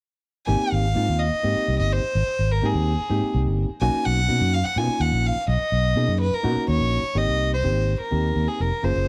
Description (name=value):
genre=electric jazz fusion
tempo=252 BPM (eighths)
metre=7/8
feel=straight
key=Ab major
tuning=A4 = 440 Hz
part: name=rich violin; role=melody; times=0.5-9.1 s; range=Ab4 to Ab5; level=-27 LUFS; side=equal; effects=none
part: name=barky reed electric piano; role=accompaniment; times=0.5-9.1 s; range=Bb3 to Ab4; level=-30 LUFS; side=equal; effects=overdrive
part: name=fingered electric bass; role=bass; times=0.5-9.1 s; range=F1 to B2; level=-25 LUFS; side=equal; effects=none
room=light reverb, small room ambience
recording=dark, warm production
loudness=-22 LUFS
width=mono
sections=0.5-7.2 A section; 7.2-9.1 B section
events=none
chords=0.5 Abmaj9; 3.8 Bmaj9; 7.2 Abmaj9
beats=| 0.48 0.72 0.95 1.19 1.43 1.67 1.91 | 2.15 2.38 2.62 2.86 3.10 3.34 3.58 | 3.81 4.05 4.29 4.53 4.77 5.01 5.24 | 5.48 5.72 5.96 6.20 6.44 6.68 6.92 | 7.16 7.39 7.63 7.87 8.11 8.35 8.59 | 8.83 9.07